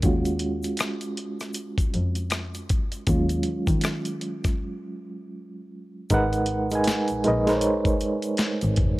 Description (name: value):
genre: R&B, neo-soul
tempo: 79 BPM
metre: 4/4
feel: swing 60% on 16ths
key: Eb minor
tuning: A4 = 441 Hz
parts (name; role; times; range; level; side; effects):
- reed electric piano; accompaniment; 0.0-9.0 s; Gb3 to Ab5; -26 LUFS; right 1 dB; tremolo
- rich double bass; bass; 0.0-9.0 s; F1 to Eb3; -27 LUFS; left 1 dB; none
- dusty soul sampler-style drum kit; drums; 0.0-9.0 s; hi-hat, kick drum, rim click, snare drum; -26 LUFS; equal; overdrive
- egg shaker and finger snaps; percussion; 0.0-8.8 s; none; -39 LUFS; left 6 dB; none
room: studio reverb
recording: dark, warm production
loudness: -22 LUFS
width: side -18 dB against mid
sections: 0.0-6.1 A section; 6.1-9.0 B section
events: reed electric piano solo 0.0-6.1; break 4.6-6.1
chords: 0.0 Ebm11; 6.1 Abm9